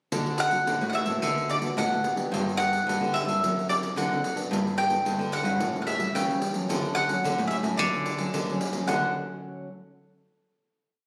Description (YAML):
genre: samba and choro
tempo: 110 BPM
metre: 4/4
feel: straight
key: D major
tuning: A4 = 440 Hz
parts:
  - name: nylon-string guitar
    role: accompaniment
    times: 0.1-9.7 s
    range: A2 to A4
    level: -35 LUFS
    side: equal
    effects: none
  - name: nylon-string guitar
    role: bass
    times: 0.1-9.1 s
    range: F#2 to D3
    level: -33 LUFS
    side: equal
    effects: none
  - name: pandeiro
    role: percussion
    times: 0.1-9.0 s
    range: none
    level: -35 LUFS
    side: equal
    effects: none
  - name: mandolin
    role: melody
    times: 0.4-9.1 s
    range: D5 to G5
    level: -29 LUFS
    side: equal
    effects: none
room: moderate large studio reverb, RT60 1.3 s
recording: recorded on a phone in the room, studio reverb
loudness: -26 LUFS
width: mono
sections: 0.1-8.9 A section; 8.9-11.1 final chord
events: none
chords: 0.1 D; 1.2 Bm7/D; 2.3 G; 3.4 D7/F#; 4.5 Gadd9; 5.6 A7; 6.7 Dmaj7